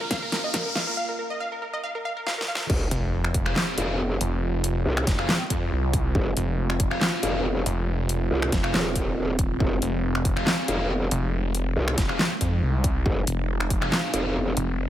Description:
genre	heavy wobble dubstep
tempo	139 BPM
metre	4/4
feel	swing 54% on 16ths, half-time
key	F minor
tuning	A4 = 436 Hz
part	wide unison pluck	melody	0.0-2.7 s	Bb4 to F5	-30 LUFS	equal	digital delay
part	evolving wavetable pad	sustained chords	0.0-14.9 s	Bb2 to F5	-33 LUFS	right 2 dB	phaser, built-in reverb, sidechain pumping
part	riser and sub drop	sound effects	0.0-4.4 s	none	-33 LUFS	equal	none
part	dubstep drum kit	drums	0.1-14.7 s	crash cymbal, finger snaps, handclaps, hi-hat, snare drum	-27 LUFS	equal	none
part	electronic kick drum	drums	0.1-13.8 s	none	-26 LUFS	equal	none
part	growl bass	bass	2.7-14.6 s	Eb1 to C2	-25 LUFS	equal	chorus, overdrive
part	snarling distorted saw bass	bass	2.9-14.9 s	Eb1 to F2	-26 LUFS	equal	distortion, overdrive
part	thick fuzz guitar	stabs	3.5-14.3 s	C4 to F5	-32 LUFS	left 1 dB	distortion, digital delay
room	little or no reverb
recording	high-pass filter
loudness	-22 LUFS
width	side -12 dB against mid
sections	0.0-2.7 A section; 2.7-14.9 B section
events	build-up 0.0-2.7; drum fill 0.0-1.0, 2.3-2.7; riser 0.0-1.0; break 1.0-2.7; drop 2.7-14.9; impact 2.7-4.4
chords	0.0 Bbm; 1.0 N.C.; 2.7 Fm

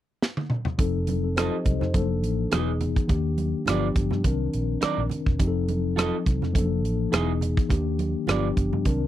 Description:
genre	lush 1970s-style soul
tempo	104 BPM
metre	4/4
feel	swing 54% on 16ths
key	unclear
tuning	A4 = 441 Hz
part	modern studio drum kit	drums	0.2-9.0 s	hi-hat, kick drum, rim click, snare drum, toms	-25 LUFS	right 1 dB	none
part	mellow tine electric piano	accompaniment	0.8-9.1 s	Eb3 to Eb5	-27 LUFS	left 4 dB	medium stereo tremolo
part	vintage muted fingered electric bass	bass	0.8-9.1 s	E1 to G2	-27 LUFS	equal	none
part	congas	percussion	0.8-9.0 s	none	-34 LUFS	right 6 dB	none
part	electric guitar through a small old amp	riff	1.4-8.5 s	Eb4 to Eb5	-29 LUFS	right 8 dB	vibrato effect
room	little or no reverb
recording	dry, close 1970s-style studio recording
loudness	-22 LUFS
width	side -12 dB against mid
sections	0.8-9.1 A section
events	drum fill 0.2-0.8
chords	0.0 N.C.; 0.8 F7; 1.9 Bbmaj7/F; 2.5 Emaj7; 3.1 Ebmaj7; 3.7 G7; 4.2 Cm9; 5.4 F7; 6.6 Bbmaj7/F; 7.1 Emaj7; 7.7 Ebmaj7; 8.3 G7

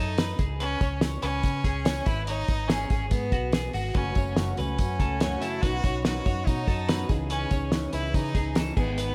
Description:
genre	jangly indie pop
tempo	143 BPM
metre	4/4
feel	straight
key	unclear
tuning	A4 = 440 Hz
part	clear violin	melody	0.0-9.1 s	B3 to F#4	-35 LUFS	equal	slapback echo, tape echo
part	twelve-string electric guitar	arpeggios	0.0-9.1 s	F#4 to C#5	-37 LUFS	equal	harmonic tremolo, slapback echo
part	vintage muted fingered electric bass	bass	0.0-9.1 s	F#1 to C#3	-33 LUFS	equal	none
part	cloth-damped thuddy drum kit	drums	0.2-9.1 s	crash cymbal, hi-hat, kick drum, snare drum	-29 LUFS	equal	none
part	tambourine	percussion	0.2-8.9 s	none	-51 LUFS	equal	none
part	fingerpicked steel-string acoustic guitar	accompaniment	3.9-9.1 s	F#2 to G#4	-35 LUFS	equal	slapback echo
room	light reverb, small room ambience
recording	none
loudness	-27 LUFS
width	mono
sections	0.0-9.1 A section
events	none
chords	0.4 C#5; 2.1 G#m; 4.0 F#m; 5.6 Badd9; 7.1 C#madd9

